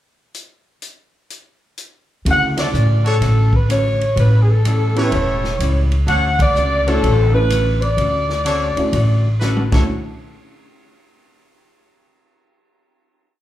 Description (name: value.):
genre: jazz, big band swing.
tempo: 126 BPM.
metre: 4/4.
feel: swing 66% on 8ths.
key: D major.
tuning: A4 = 437 Hz.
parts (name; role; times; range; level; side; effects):
swinging big-band drum kit; drums; 0.3-9.8 s; crash cymbal, hi-hat, kick drum, ride cymbal, snare drum, toms; -24 LUFS; equal; none.
warm saxophone section; melody; 2.3-9.4 s; G#4 to F#5; -19 LUFS; left 1 dB; plate reverb, slapback echo.
archtop guitar, miked and amplified; accompaniment; 2.3-9.9 s; A2 to F#4; -27 LUFS; left 3 dB; plate reverb, slapback echo.
warm baby grand piano; accompaniment; 2.3-9.9 s; C#3 to A4; -24 LUFS; right 1 dB; plate reverb, slapback echo.
upright bass; bass; 2.3-9.9 s; E1 to A2; -16 LUFS; equal; none.
brilliant trumpet section; stabs; 2.6-9.8 s; D4 to C#5; -27 LUFS; right 2 dB; plate reverb, slapback echo.
room: light reverb.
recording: live gig heard through the venue's PA, club reverb.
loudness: -14 LUFS.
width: side -13 dB against mid.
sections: 0.3-2.3 pickup bar; 2.3-9.9 A section; 9.9-11.8 final hit.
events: band accent 2.5, 6.3; drum fill 9.4-9.9.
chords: 0.3 N.C.; 2.3 Dmaj7; 4.2 A7; 6.1 Dmaj7; 9.9 N.C..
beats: | 0.35 0.83 1.31 1.78 | 2.26 2.74 3.22 3.69 | 4.17 4.65 5.12 5.60 | 6.08 6.55 7.03 7.51 | 7.99 8.46 8.94 9.42.